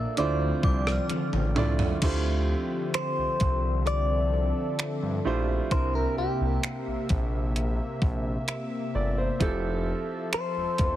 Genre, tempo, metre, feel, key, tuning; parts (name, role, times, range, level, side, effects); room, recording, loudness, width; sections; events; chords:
contemporary R&B; 65 BPM; 4/4; straight; D minor; A4 = 438 Hz
direct-recorded clean electric guitar; melody; 0.0-11.0 s; G4 to E5; -30 LUFS; left 1 dB; phaser, tape echo
clear concert grand piano; accompaniment; 0.0-11.0 s; Bb2 to E5; -32 LUFS; right 4 dB
warm analog pad; sustained chords; 0.0-11.0 s; C3 to E5; -33 LUFS; left 1 dB; chorus
smooth synth bass; bass; 0.0-11.0 s; E1 to G2; -28 LUFS; equal
gated 80s digital drum machine; drums; 0.2-11.0 s; crash cymbal, finger snaps, hi-hat, kick drum, rim click, toms; -28 LUFS; equal; gated reverb
synth chime; texture; 0.6-2.0 s; D6 to F6; -39 LUFS; equal; ensemble chorus, tremolo, tape echo
little or no reverb; heavily compressed radio sound; -24 LUFS; side -13 dB against mid
0.0-2.0 A section; 2.0-11.0 B section
drum fill 1.1-2.0
0.2 Dm7; 2.0 Dm11; 5.7 C7; 9.4 Fmaj7